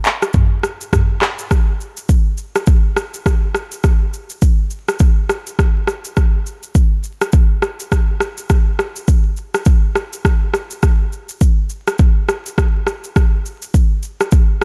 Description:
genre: afrobeats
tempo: 103 BPM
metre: 4/4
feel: swing 58% on 16ths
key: none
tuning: none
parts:
  - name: afro-pop drum kit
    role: drums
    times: 0.0-14.6 s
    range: handclaps, kick drum, rim click, shaker, toms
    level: -16 LUFS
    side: equal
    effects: none
room: little or no reverb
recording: vinyl crackle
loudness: -16 LUFS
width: mono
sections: 0.0-1.5 A section; 1.5-14.6 B section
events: none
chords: none

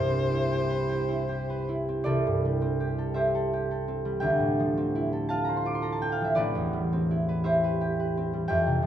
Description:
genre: classical, impressionist duo for violin and harp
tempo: 56 BPM (dotted quarters)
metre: 6/8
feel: uneven beats, rubato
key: C major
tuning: A4 = 444 Hz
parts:
  - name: rich violin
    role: melody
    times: 0.0-1.7 s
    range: C5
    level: -32 LUFS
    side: left 3 dB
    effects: none
  - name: concert harp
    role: accompaniment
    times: 0.0-8.9 s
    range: A1 to D6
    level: -25 LUFS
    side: right 1 dB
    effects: none
room: wet recital hall reverb, RT60 1.6 s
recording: dark, warm production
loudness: -25 LUFS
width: side -10 dB against mid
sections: 0.0-2.1 A section; 2.1-8.9 B section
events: none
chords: 0.0 Cmaj7; 2.1 C6; 4.2 Dm11; 6.4 Am9

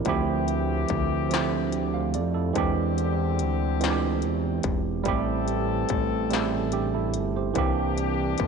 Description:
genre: slow six-eight R&B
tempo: 48 BPM (dotted quarters)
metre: 6/8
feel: straight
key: D minor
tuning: A4 = 441 Hz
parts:
  - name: tine electric piano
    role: accompaniment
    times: 0.0-8.5 s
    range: E3 to F5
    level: -26 LUFS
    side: right 10 dB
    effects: none
  - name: fat analog bass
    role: bass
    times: 0.0-8.5 s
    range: E1 to F2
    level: -28 LUFS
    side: left 2 dB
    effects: none
  - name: mellow horn section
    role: stabs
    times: 0.1-8.5 s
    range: D3 to A4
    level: -32 LUFS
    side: left 13 dB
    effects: none
  - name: industrial drum kit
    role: drums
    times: 0.1-8.5 s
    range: hi-hat, kick drum, snare drum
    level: -30 LUFS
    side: left 7 dB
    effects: distortion
room: moderate echo chamber reverb, RT60 2.6 s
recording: 1960s-style stereo with parts hard left and right, nothing above 10.4 kHz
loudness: -23 LUFS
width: side -5 dB against mid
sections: 0.0-8.5 A section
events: none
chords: 0.1 Dm11; 2.6 E7alt; 5.1 Am7; 7.6 C9

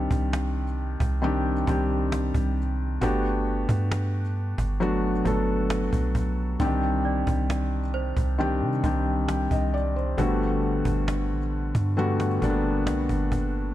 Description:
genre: contemporary R&B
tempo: 67 BPM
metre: 4/4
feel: straight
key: G major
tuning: A4 = 440 Hz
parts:
  - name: felt-muted upright piano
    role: accompaniment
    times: 0.0-13.7 s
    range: D3 to G5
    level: -26 LUFS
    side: left 2 dB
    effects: none
  - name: soft 808-style bass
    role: bass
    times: 0.0-13.7 s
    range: G1 to C3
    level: -27 LUFS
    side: right 1 dB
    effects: none
  - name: cajon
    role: drums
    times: 0.1-13.5 s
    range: none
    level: -31 LUFS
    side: right 1 dB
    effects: none
  - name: worn celesta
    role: texture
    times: 7.1-8.8 s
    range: C5 to D5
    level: -37 LUFS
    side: right 11 dB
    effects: tape echo
room: small room ambience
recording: none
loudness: -23 LUFS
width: side -13 dB against mid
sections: 0.0-13.7 A section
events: none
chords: 0.0 Cmadd9; 3.0 Gmaj9; 6.6 Cmadd9; 10.2 Gmaj9

